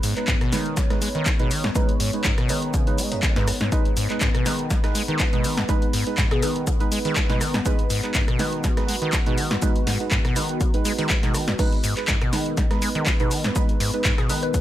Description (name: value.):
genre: acid house.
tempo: 122 BPM.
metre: 4/4.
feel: swing 54% on 16ths.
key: G# minor.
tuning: A4 = 440 Hz.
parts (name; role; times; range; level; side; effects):
dark analog pad; sustained chords; 0.0-14.6 s; B3 to C#5; -31 LUFS; left 2 dB; chorus, sidechain pumping.
acid bass, saw; riff; 0.0-14.6 s; F#2 to G#3; -27 LUFS; equal; overdrive, wide subtle chorus, cassette tape, tape echo.
dusty soul sampler-style drum kit; drums; 0.0-14.6 s; hi-hat, shaker, snare drum; -35 LUFS; left 1 dB; none.
punchy analog drum machine; drums; 0.0-14.6 s; crash cymbal, handclaps, hi-hat, rim click, snare drum; -27 LUFS; equal; none.
deep mellow chord stab; stabs; 0.2-14.5 s; G#3 to B4; -29 LUFS; right 5 dB; chorus, cassette tape, tape echo.
electronic kick drum; drums; 0.3-14.6 s; none; -23 LUFS; equal; none.
glassy wavetable pluck; melody; 6.3-6.5, 14.2-14.6 s; G#4 to B4; -30 LUFS; left 6 dB; chorus, tape echo.
room: little or no reverb.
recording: none.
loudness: -20 LUFS.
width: side -13 dB against mid.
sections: 0.0-14.6 A section.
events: none.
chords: 0.0 G#m.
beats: 0.28 0.77 1.26 | 1.75 2.25 2.74 3.23 | 3.72 4.21 4.71 5.20 | 5.69 6.18 6.67 7.17 | 7.66 8.15 8.64 9.13 | 9.62 10.12 10.61 11.10 | 11.59 12.08 12.57 13.07 | 13.56 14.05 14.54.